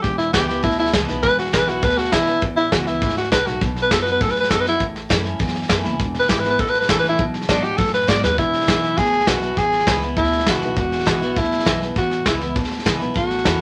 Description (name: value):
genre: rockabilly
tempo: 201 BPM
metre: 4/4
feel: straight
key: E mixolydian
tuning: A4 = 441 Hz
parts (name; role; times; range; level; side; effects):
- raspy tenor saxophone; melody; 0.0-13.6 s; D4 to D5; -22 LUFS; equal; none
- picked steel-string acoustic guitar; accompaniment; 0.0-13.6 s; E2 to F#4; -28 LUFS; equal; none
- upright bass; bass; 0.0-13.6 s; E1 to A2; -31 LUFS; equal; none
- soft brush drum kit; drums; 0.0-13.5 s; hi-hat, kick drum, snare drum; -24 LUFS; equal; none
room: moderate studio reverb, RT60 0.6 s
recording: none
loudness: -19 LUFS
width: mono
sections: 0.0-8.4 A section; 8.4-13.6 B section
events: tenor saxophone solo 0.0-8.4; drum fill 8.2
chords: 0.0 E; 3.6 B; 4.8 A; 6.0 E; 6.6 A; 7.2 B; 8.4 E